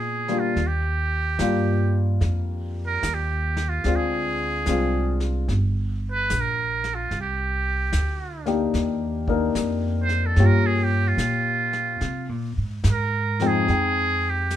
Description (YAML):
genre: jazz ballad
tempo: 73 BPM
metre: 4/4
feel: swing 66% on 8ths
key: C minor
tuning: A4 = 440 Hz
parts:
  - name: trumpet with metal mute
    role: melody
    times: 0.0-14.6 s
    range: F4 to C5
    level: -25 LUFS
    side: right 4 dB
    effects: none
  - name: warm baby grand piano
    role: accompaniment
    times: 0.0-14.6 s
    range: F2 to G5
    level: -25 LUFS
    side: left 4 dB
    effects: none
  - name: upright bass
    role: bass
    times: 0.0-14.6 s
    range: G1 to C3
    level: -24 LUFS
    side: right 1 dB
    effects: none
  - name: vintage brush drum kit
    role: drums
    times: 0.3-14.6 s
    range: brushed snare drum, hi-hat, kick drum, snare drum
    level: -34 LUFS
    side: left 2 dB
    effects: none
room: light reverb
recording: minimal, uncompressed stereo recording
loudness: -21 LUFS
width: side -11 dB against mid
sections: 0.0-13.7 A section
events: muted trumpet solo 0.0-13.7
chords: 0.0 Bb7b9; 0.6 Ebmaj9; 3.9 Dm7b5; 5.5 Gm; 7.1 Cm9; 10.4 Gm7b5; 12.0 Cm7; 13.7 Fm9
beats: | 0.57 1.40 2.22 3.04 | 3.85 4.67 5.49 6.30 | 7.11 7.92 8.74 9.55 | 10.37 11.19 12.01 12.85 | 13.68 14.51